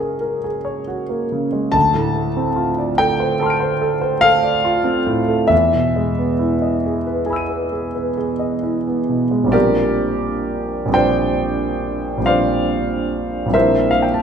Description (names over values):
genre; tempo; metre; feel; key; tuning
classical, impressionist solo piano; 41-49 BPM (dotted quarters); 9/8; rubato; Bb lydian; A4 = 440 Hz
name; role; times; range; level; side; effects
warm concert grand piano; solo; 0.0-14.2 s; Bb1 to D#7; -16 LUFS; equal; none
room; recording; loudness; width
wet recital hall reverb, RT60 1.7 s; none; -16 LUFS; side -7 dB against mid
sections
0.0-9.5 A section; 9.5-14.2 B section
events
none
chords
0.0 Gbadd9; 1.8 Dm7; 5.5 Emaj7; 9.5 Bb69; 13.5 C9/Bb